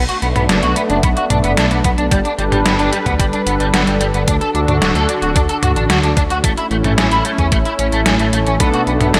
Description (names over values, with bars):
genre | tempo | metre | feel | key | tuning
synthwave | 111 BPM | 4/4 | straight | B minor | A4 = 440 Hz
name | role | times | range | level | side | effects
lush unison pad | sustained chords | 0.0-9.2 s | D3 to B4 | -22 LUFS | equal | chorus, phaser, sidechain pumping
dark detuned saw bass | bass | 0.0-9.2 s | D1 to E2 | -21 LUFS | equal | tube saturation
electric guitar at the edge of break-up | riff | 0.1-9.2 s | G3 to A4 | -22 LUFS | equal | ensemble chorus, low-pass filter, delay
detuned 8-bit digital drum machine | drums | 0.1-9.2 s | hi-hat, snare drum, toms | -21 LUFS | equal | overdrive
electronic kick drum | drums | 1.0-8.7 s | none | -20 LUFS | equal | overdrive
chorused polysynth | stabs | 8.6-9.2 s | B2 to A4 | -21 LUFS | equal | none
room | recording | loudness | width
moderate lush hall reverb, RT60 2.1 s | none | -15 LUFS | mono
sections
0.0-9.2 A section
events
none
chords
0.0 Bm7; 2.1 Gadd9; 4.3 D; 6.4 A; 8.6 Bm7